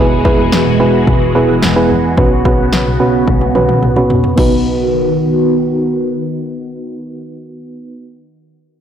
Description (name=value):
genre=synth-pop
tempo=109 BPM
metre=4/4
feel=straight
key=B major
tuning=A4 = 440 Hz
part: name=FM electric piano with tremolo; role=accompaniment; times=0.0-8.1 s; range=B3 to B4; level=-15 LUFS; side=right 2 dB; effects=low-pass filter
part: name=phased string machine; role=sustained chords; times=0.0-7.3 s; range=C#3 to F#4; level=-16 LUFS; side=left 1 dB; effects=ensemble chorus, phaser, low-pass filter
part: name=rich double bass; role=bass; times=0.0-7.3 s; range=E1 to B2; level=-17 LUFS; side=left 1 dB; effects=none
part: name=punchy analog drum machine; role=drums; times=0.2-4.5 s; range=crash cymbal, kick drum, snare drum, toms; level=-15 LUFS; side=left 1 dB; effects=none
room=moderate lush hall reverb, RT60 1.6 s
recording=blown-out, overdriven recording, overdrive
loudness=-10 LUFS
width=side -9 dB against mid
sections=0.0-4.4 A section; 4.4-6.6 B section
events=filter sweep 0.0-4.4; drum fill 3.3-4.4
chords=0.0 Eadd9; 2.2 Bsus2; 4.4 B